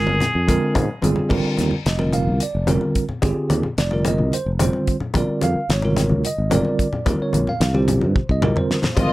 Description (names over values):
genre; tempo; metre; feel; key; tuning
electric jazz fusion; 219 BPM (eighths); 7/8; straight; unclear; A4 = 441 Hz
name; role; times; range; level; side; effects
trumpet with straight mute; melody; 0.0-1.0 s; Ab4; -24 LUFS; equal; tape echo
bell-like tine electric piano; accompaniment; 0.0-9.1 s; C3 to F5; -21 LUFS; right 2 dB; medium stereo tremolo
sustaining fretless electric bass; bass; 0.0-9.1 s; F1 to Ab2; -21 LUFS; equal; none
congas; percussion; 0.1-9.1 s; none; -25 LUFS; left 3 dB; none
damped 70s drum kit; drums; 0.2-9.1 s; crash cymbal, hi-hat, kick drum, snare drum, toms; -22 LUFS; equal; none
rich symphonic string section; sustained chords; 9.0-9.1 s; C3 to Eb5; -21 LUFS; left 2 dB; none
room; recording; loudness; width
light reverb; none; -17 LUFS; side -17 dB against mid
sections
0.0-1.3 A section; 1.3-9.1 B section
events
drum fill 8.2-9.0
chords
0.0 Abmaj9#11; 1.3 Ab6; 5.2 Bb9; 7.1 Eb69